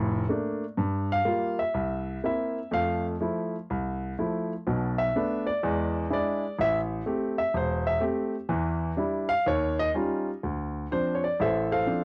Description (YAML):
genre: solo jazz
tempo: 124 BPM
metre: 4/4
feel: swing 66% on 8ths, rubato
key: D minor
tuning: A4 = 438 Hz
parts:
  - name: clear baby grand piano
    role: solo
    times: 0.0-12.0 s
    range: E1 to F5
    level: -28 LUFS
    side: equal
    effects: cassette tape
room: light reverb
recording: home recording on cassette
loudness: -28 LUFS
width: mono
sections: 0.0-10.4 A section; 10.4-12.0 B section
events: grand piano solo 0.0-10.4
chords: 0.0 Bbmaj7; 0.8 Gm7; 1.8 C7; 2.7 Fmaj7; 4.7 Bmadd11; 5.6 E7; 6.6 Am7; 8.5 Em7; 9.5 Eb9; 10.4 Dm7